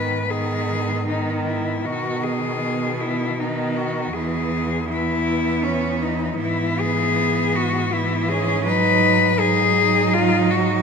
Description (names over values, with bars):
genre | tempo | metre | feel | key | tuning
classical, lyrical piece for cello ensemble | 79 BPM | 3/4 | rubato | unclear | A4 = 441 Hz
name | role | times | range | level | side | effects
rich cello | melody | 0.0-10.8 s | C#4 to Cb5 | -21 LUFS | left 6 dB | none
clear cello | second line | 0.0-10.8 s | B3 to Eb4 | -26 LUFS | right 9 dB | none
rich cello | accompaniment | 0.0-10.8 s | D#3 to Gb3 | -25 LUFS | right 1 dB | none
warm cello | bass | 0.0-10.8 s | E2 to B2 | -27 LUFS | equal | none
room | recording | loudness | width
moderate concert hall reverb, RT60 2.3 s | none | -18 LUFS | side -5 dB against mid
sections
0.0-10.8 A section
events
none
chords
0.0 G#m; 1.9 G#m/B; 4.2 E; 6.4 E/G#; 8.7 Abm7